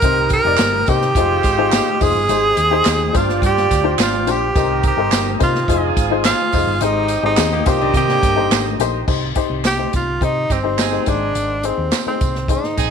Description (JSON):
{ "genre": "uptempo 1960s-style soul", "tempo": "106 BPM", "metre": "4/4", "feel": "straight", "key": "C minor", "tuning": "A4 = 441 Hz", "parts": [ { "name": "breathy tenor saxophone", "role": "melody", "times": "0.0-12.9 s", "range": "C4 to Bb4", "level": "-19 LUFS", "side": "right 1 dB", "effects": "none" }, { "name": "warm horn section", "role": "second line", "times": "0.0-12.9 s", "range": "Ab3 to Eb5", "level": "-25 LUFS", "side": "right 14 dB", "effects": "slapback echo" }, { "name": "warm upright piano", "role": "accompaniment", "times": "0.0-12.8 s", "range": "G2 to D5", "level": "-22 LUFS", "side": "left 12 dB", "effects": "none" }, { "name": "mellow tonewheel organ", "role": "sustained chords", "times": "0.0-9.1 s", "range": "C5 to Eb6", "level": "-28 LUFS", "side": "right 1 dB", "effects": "slow rotary speaker" }, { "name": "hollow-body short-scale picked electric bass", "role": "bass", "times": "0.0-12.9 s", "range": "F1 to C3", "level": "-23 LUFS", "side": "right 1 dB", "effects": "none" }, { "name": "swinging big-band drum kit", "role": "drums", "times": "0.0-12.9 s", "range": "crash cymbal, hi-hat, kick drum, snare drum", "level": "-21 LUFS", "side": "equal", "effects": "none" }, { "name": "tambourine and handclaps", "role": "percussion", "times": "0.0-12.9 s", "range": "none", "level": "-27 LUFS", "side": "right 16 dB", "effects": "none" }, { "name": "archtop guitar, miked and amplified", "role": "riff", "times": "7.4-8.9 s", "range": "D3 to Ab4", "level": "-24 LUFS", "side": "left 14 dB", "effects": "none" } ], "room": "small room ambience", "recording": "1960s-style stereo with parts hard left and right", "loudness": "-14 LUFS", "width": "side -7 dB against mid", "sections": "0.0-9.1 A section; 9.1-12.9 B section", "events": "none", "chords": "0.0 Cm7; 1.2 Fm7; 2.3 Abmaj7; 3.1 G7sus4; 4.5 Cm7; 5.7 Fm7; 6.8 Abmaj7; 7.7 Cm7; 9.1 Cm; 11.1 Ab" }